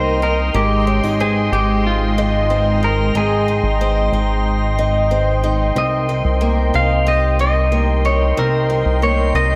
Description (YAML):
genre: dream pop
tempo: 92 BPM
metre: 4/4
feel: straight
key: unclear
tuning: A4 = 438 Hz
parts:
  - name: clean electric guitar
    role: melody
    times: 0.0-9.6 s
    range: F4 to F5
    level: -23 LUFS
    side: equal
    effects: tape echo
  - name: warm analog pad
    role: sustained chords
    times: 0.0-9.6 s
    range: Ab3 to C6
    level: -25 LUFS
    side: equal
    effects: chorus
  - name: picked twelve-string acoustic guitar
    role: arpeggios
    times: 0.0-9.6 s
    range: C3 to G4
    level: -23 LUFS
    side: equal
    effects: subtle chorus, tape echo
  - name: chorused synth bass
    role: bass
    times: 0.0-9.6 s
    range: Ab1 to C2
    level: -21 LUFS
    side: equal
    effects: none
  - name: drifting glass-harmonics texture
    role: texture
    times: 0.0-9.6 s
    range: Eb5 to C6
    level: -35 LUFS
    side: equal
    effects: chorus, built-in reverb, tape echo
room: moderate lush hall reverb, RT60 2.2 s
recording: none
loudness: -17 LUFS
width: mono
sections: 0.0-9.6 A section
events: none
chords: 0.0 Cm7; 0.5 Abmaj7; 5.8 Cm7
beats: | 0.54 1.20 1.85 2.50 | 3.15 3.80 4.46 5.11 | 5.76 6.41 7.07 7.72 | 8.37 9.02